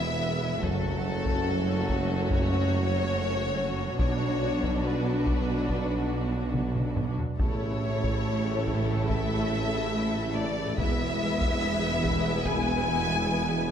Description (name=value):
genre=cinematic, epic orchestral film score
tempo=71 BPM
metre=4/4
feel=straight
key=F# minor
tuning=A4 = 440 Hz
part: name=warm symphonic violin section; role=melody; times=0.0-13.7 s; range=A4 to G#5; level=-32 LUFS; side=left 3 dB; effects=none
part: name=warm symphonic violin section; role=second line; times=0.0-13.7 s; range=C#4 to B4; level=-36 LUFS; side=left 4 dB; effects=none
part: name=rich symphonic viola section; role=accompaniment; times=0.0-13.7 s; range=C#3 to D4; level=-33 LUFS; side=right 3 dB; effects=none
part: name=mellow French horn section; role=sustained chords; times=0.0-13.7 s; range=F#3 to E4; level=-36 LUFS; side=left 4 dB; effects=none
part: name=rich symphonic double bass section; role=bass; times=0.0-13.7 s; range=E1 to B1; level=-33 LUFS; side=right 2 dB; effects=none
part: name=warm studio cello section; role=bass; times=0.0-13.7 s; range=E2 to B2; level=-33 LUFS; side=right 3 dB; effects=none
part: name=warm tuba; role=bass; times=0.0-13.7 s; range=E1 to B1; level=-34 LUFS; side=right 4 dB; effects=none
part: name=taiko ensemble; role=drums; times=0.6-13.3 s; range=none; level=-31 LUFS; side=equal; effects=none
room=moderate concert hall reverb, RT60 2.1 s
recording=none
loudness=-25 LUFS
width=side -8 dB against mid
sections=0.0-13.7 A section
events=drum fill 6.5-7.4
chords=0.0 E; 0.6 F#m; 4.0 Bm; 7.4 A; 10.8 E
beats=| 0.62 1.46 2.30 3.14 | 3.99 4.84 5.69 6.54 | 7.39 8.25 9.10 9.94 | 10.78 11.62 12.46 13.29